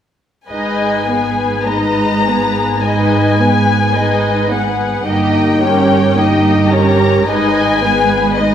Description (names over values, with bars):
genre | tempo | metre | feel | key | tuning
classical, slow romantic movement for string orchestra | 51-55 BPM | 4/4 | rubato | G# minor | A4 = 437 Hz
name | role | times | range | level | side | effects
muted studio violin section | melody | 0.5-8.5 s | D#5 to A#5 | -18 LUFS | left 5 dB | none
muted studio violin section | second line | 0.5-8.5 s | G4 to D#5 | -18 LUFS | left 1 dB | none
muted studio viola section | accompaniment | 0.5-8.5 s | G#3 to G4 | -16 LUFS | equal | none
muted studio cello section | bass | 0.5-8.5 s | G2 to G#2 | -20 LUFS | right 4 dB | none
muted studio double bass section | bass | 0.5-8.5 s | G1 to G#1 | -20 LUFS | right 3 dB | none
room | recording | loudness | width
wet scoring stage reverb, RT60 1.5 s | none | -11 LUFS | side -9 dB against mid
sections
0.5-8.5 A section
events
none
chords
0.5 G#m; 5.1 D#7/G; 7.3 G#m